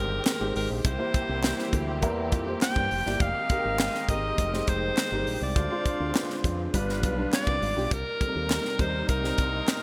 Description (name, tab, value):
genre	polished 1980s jazz-funk pop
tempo	102 BPM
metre	4/4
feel	straight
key	C minor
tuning	A4 = 440 Hz
part	edgy alto saxophone	melody	0.0-9.8 s	Bb4 to G5	-33 LUFS	equal	none
part	mellow horn section	second line	0.0-9.8 s	G3 to F5	-40 LUFS	equal	none
part	dark grand piano	accompaniment	0.0-9.8 s	G3 to D5	-35 LUFS	equal	subtle chorus
part	warm studio string section	sustained chords	0.0-9.8 s	C3 to G4	-41 LUFS	equal	none
part	fingered electric bass with an envelope filter	bass	0.0-9.6 s	F1 to G2	-34 LUFS	equal	none
part	group handclap	percussion	0.2-9.8 s	none	-43 LUFS	equal	none
part	tight funk drum kit	drums	0.3-9.8 s	hi-hat, kick drum, snare drum	-30 LUFS	equal	gated reverb
room	light reverb, studio ambience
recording	bright 1980s-style digital production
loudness	-27 LUFS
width	mono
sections	0.0-9.8 A section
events	none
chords	0.0 Abmaj7; 0.8 C7; 3.2 Fm11; 5.6 Dm7b5; 6.7 G7; 7.9 Cm7